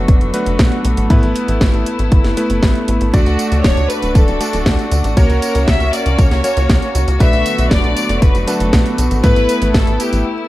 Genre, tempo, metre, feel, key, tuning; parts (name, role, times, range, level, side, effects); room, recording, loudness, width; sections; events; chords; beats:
italo disco; 118 BPM; 4/4; straight; D major; A4 = 440 Hz
warm chamber string section; sustained chords; 0.0-10.5 s; D3 to F#4; -22 LUFS; equal
clear electric grand piano; stabs; 0.0-10.3 s; A3 to D5; -20 LUFS; equal
tight sequencer bass; bass; 0.0-10.2 s; D1 to A2; -16 LUFS; equal
electronic kick drum; drums; 0.1-9.8 s; -12 LUFS; equal
house drum kit; drums; 0.1-10.2 s; hi-hat, snare drum, tambourine; -21 LUFS; equal
warm studio violin section; melody; 3.1-10.3 s; F#4 to E5; -20 LUFS; left 2 dB; tape echo
digital ambience; vinyl crackle; -12 LUFS; side -16 dB against mid
0.0-10.5 A section
break 10.3
0.0 Bm7; 1.1 Asus2; 3.1 D; 5.2 F#/C#; 7.2 Bm7; 9.2 Asus2
0.08 0.59 | 1.10 1.61 2.12 2.63 | 3.13 3.64 4.15 4.66 | 5.17 5.68 6.19 6.69 | 7.20 7.71 8.22 8.73 | 9.24 9.74 10.25